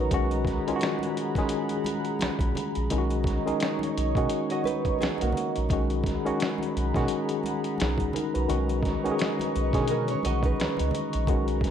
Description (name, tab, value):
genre	R&B, neo-soul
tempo	86 BPM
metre	4/4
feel	swing 58% on 16ths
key	B major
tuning	A4 = 440 Hz
part	barky tine electric piano	accompaniment	0.0-11.7 s	D3 to F#5	-28 LUFS	left 2 dB	medium stereo tremolo, plate reverb
part	warbly tape-like pad	sustained chords	0.0-11.7 s	G#4 to C#6	-33 LUFS	right 2 dB	chorus, built-in reverb, plate reverb
part	round analog bass	bass	0.0-11.7 s	A#1 to B2	-29 LUFS	equal	none
part	dusty soul sampler-style drum kit	drums	0.1-11.7 s	finger snaps, hi-hat, kick drum, snare drum	-31 LUFS	equal	none
part	congas	percussion	0.1-11.7 s	none	-41 LUFS	right 4 dB	none
part	nylon-string guitar	second line	4.5-5.7, 9.9-11.2 s	A#3 to D#5	-31 LUFS	right 7 dB	plate reverb
room	light reverb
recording	none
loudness	-24 LUFS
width	side -9 dB against mid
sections	0.0-11.7 A section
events	none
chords	0.1 G#m9/B; 2.9 Bmaj9; 5.7 G#m9/B; 8.5 Bmaj9